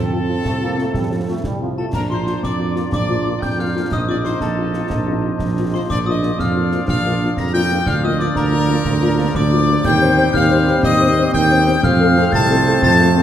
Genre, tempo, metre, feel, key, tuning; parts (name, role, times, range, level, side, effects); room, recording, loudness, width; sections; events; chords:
military-style march for wind band; 121 BPM (dotted quarters); 6/8; straight; Bb major; A4 = 443 Hz
bright trumpet section; melody; 0.0-13.2 s; A4 to Bb5; -24 LUFS; left 1 dB
clear euphonium; second line; 0.0-1.7 s; C4; -28 LUFS; right 3 dB
clear woodwind section; second line; 0.0-13.2 s; F4 to Eb5; -29 LUFS; equal
mellow hollow piccolo; second line; 0.0-13.2 s; A5 to Bb6; -24 LUFS; left 3 dB
dark trombone section; sustained chords; 0.0-13.2 s; F3 to Eb4; -26 LUFS; right 2 dB
dark tuba; bass; 0.0-13.2 s; Bb1 to F2; -18 LUFS; right 2 dB
dark French horn section; accompaniment; 0.1-13.2 s; Bb3 to C5; -24 LUFS; left 4 dB
concert snare drum, concert bass drum and clash cymbals; drums; 0.4-13.0 s; -24 LUFS; equal
glockenspiel with hard plastic mallets; second line; 1.8-13.2 s; A5 to Bb6; -25 LUFS; left 4 dB
wet recital hall reverb, RT60 1.4 s; -14 LUFS; side -10 dB against mid
0.0-1.9 A section; 1.9-13.2 B section
0.0 F; 1.9 Bb; 3.9 F7/Bb; 5.9 Bb; 7.9 Bb/D; 9.9 Cm/Eb; 11.8 F